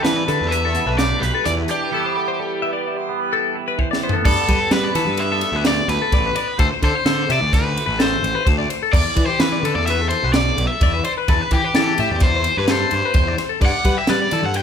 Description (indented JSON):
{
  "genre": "math rock and midwest emo",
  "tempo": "128 BPM",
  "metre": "5/4",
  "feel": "straight",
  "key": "G major",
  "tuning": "A4 = 439 Hz",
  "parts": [
    { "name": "cranked stack guitar", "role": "melody", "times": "0.0-14.6 s", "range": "G4 to G5", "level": "-22 LUFS", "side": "equal", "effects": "overdrive" },
    { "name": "twangy electric guitar", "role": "accompaniment", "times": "0.0-6.6 s", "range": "E3 to B4", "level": "-26 LUFS", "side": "right 6 dB", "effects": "phaser" },
    { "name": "twelve-string electric guitar", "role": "arpeggios", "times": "0.0-14.6 s", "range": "G4 to E5", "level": "-23 LUFS", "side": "left 8 dB", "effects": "warbly pitch drift" },
    { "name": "fuzz picked electric bass", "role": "bass", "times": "0.0-14.6 s", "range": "A1 to G3", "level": "-22 LUFS", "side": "equal", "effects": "overdrive" },
    { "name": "crisp fusion drum kit", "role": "drums", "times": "0.0-14.6 s", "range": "crash cymbal, hi-hat, kick drum, ride cymbal, snare drum, toms", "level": "-20 LUFS", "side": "right 1 dB", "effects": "none" }
  ],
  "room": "light reverb",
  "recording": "band playing live in one room",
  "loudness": "-16 LUFS",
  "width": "side -7 dB against mid",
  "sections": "0.0-4.3 A section; 4.3-14.6 B section",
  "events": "break 1.9-4.3; drum fill 3.8-4.3",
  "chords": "0.0 Em7; 1.9 Cmaj7/E; 4.3 G69; 6.6 D5; 8.9 E7(no3); 11.3 Cmaj7/E; 13.6 Gadd9"
}